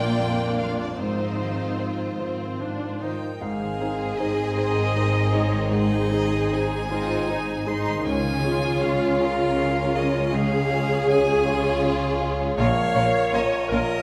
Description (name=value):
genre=cinematic, emotional film score for orchestra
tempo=49-54 BPM (dotted quarters)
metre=6/8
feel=rubato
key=Ab major from 3.4 s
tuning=A4 = 440 Hz
part: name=warm studio violin section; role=melody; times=0.0-13.8 s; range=Ab4 to G5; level=-39 LUFS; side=equal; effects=none
part: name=rich studio violin section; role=second line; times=0.0-13.8 s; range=C4 to D5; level=-32 LUFS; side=equal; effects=none
part: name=warm grand piano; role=accompaniment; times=0.0-14.0 s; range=Bb1 to Eb5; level=-30 LUFS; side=equal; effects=none
part: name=warm studio viola section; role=accompaniment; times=0.0-14.0 s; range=Bb3 to Eb5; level=-30 LUFS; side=equal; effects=none
part: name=concert harp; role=arpeggios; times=0.0-14.0 s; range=Ab2 to Db6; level=-34 LUFS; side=equal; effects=none
part: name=dark symphonic cello section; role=bass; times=0.0-13.8 s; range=Ab2 to Db3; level=-31 LUFS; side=equal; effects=none
part: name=rich violin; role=melody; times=3.0-14.0 s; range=Db5 to C6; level=-32 LUFS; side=equal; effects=none
part: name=rich studio double bass section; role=bass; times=3.4-13.8 s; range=Ab1 to Db2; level=-33 LUFS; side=equal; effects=none
room=wet scoring stage reverb, RT60 1.8 s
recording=none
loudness=-23 LUFS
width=mono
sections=0.0-3.4 A section; 3.4-14.0 B section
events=none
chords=0.0 Bb; 1.0 Ab6; 3.4 Ab; 8.1 Db; 12.6 Bbm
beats=| 1.00 2.20 | 3.41 4.56 | 5.72 6.91 | 8.06 9.20 | 10.33 11.46 | 12.58 13.71